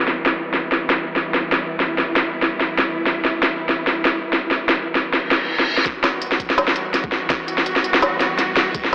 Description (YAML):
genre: half-time drum and bass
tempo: 166 BPM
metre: 4/4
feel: swing 55% on 16ths, half-time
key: E minor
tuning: A4 = 441 Hz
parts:
  - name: dark studio cello section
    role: sustained chords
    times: 0.0-8.9 s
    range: E3 to F#4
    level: -25 LUFS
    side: equal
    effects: sidechain pumping
  - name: organic electronic drum kit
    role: drums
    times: 0.1-8.9 s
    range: hi-hat, snare drum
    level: -17 LUFS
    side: equal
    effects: low-pass filter on snare, low-pass filter on hats, low-pass filter on room
  - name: reverse cymbal and riser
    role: sound effects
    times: 5.3-8.9 s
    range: none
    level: -27 LUFS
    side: equal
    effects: none
  - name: electronic kick drum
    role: drums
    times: 5.9-8.8 s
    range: none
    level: -32 LUFS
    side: equal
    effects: overdrive
room: light reverb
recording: dry, gritty hardware recording, AM radio sound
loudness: -17 LUFS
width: side -27 dB against mid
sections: 0.0-5.9 A section; 5.9-8.9 B section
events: reverse cymbal 5.3-5.9; build-up 5.9-8.9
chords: 0.0 Em; 5.9 Emadd9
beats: | 0.07 0.44 0.80 1.16 | 1.52 1.88 2.24 2.60 | 2.97 3.33 3.69 4.05 | 4.41 4.77 5.13 5.50 | 5.86 6.22 6.58 6.94 | 7.30 7.67 8.03 8.39 | 8.75